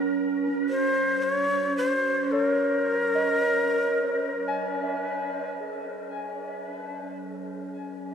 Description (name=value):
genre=ambient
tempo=55 BPM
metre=3/4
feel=straight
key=Gb lydian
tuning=A4 = 445 Hz
part: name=breathy shakuhachi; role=melody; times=0.0-5.0 s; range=Bb4 to Db5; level=-26 LUFS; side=left 1 dB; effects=diffuse ambient delay
part: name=muted felt-like synth keys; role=arpeggios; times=0.0-8.1 s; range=Db4 to Ab5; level=-28 LUFS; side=right 2 dB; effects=chorus, diffuse ambient delay
part: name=analog drone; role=drone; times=0.0-8.1 s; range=Gb3 to Db4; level=-39 LUFS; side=left 1 dB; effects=chorus, phaser
room=wet huge ambient reverb, RT60 7.9 s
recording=cassette tape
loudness=-24 LUFS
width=side -7 dB against mid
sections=0.0-5.6 A section; 5.6-8.1 B section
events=fade-out on synth drone 0.0-5.6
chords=0.0 Gb; 5.6 Absus4/Gb